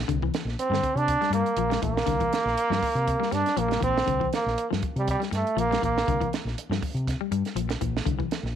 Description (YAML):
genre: afrobeat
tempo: 120 BPM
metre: 4/4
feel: swing 54% on 16ths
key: C mixolydian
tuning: A4 = 441 Hz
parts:
  - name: clean electric guitar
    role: arpeggios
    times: 0.0-8.4 s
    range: D3 to G3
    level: -32 LUFS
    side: left 16 dB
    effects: none
  - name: fingered electric bass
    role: bass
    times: 0.0-8.5 s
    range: Bb1 to C3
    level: -29 LUFS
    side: left 1 dB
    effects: none
  - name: compact cocktail drum kit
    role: drums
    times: 0.1-8.5 s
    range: hi-hat, kick drum, snare drum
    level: -31 LUFS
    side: right 4 dB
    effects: none
  - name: bright trombone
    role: melody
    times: 0.6-6.3 s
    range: G3 to D4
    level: -25 LUFS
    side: right 3 dB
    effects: none
room: light reverb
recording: 1960s-style stereo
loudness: -23 LUFS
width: side -9 dB against mid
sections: 0.0-8.6 A section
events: none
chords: 0.0 C9sus4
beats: | 0.09 0.58 1.08 1.58 | 2.08 2.58 3.07 3.57 | 4.07 4.57 5.07 5.57 | 6.06 6.56 7.06 7.56 | 8.06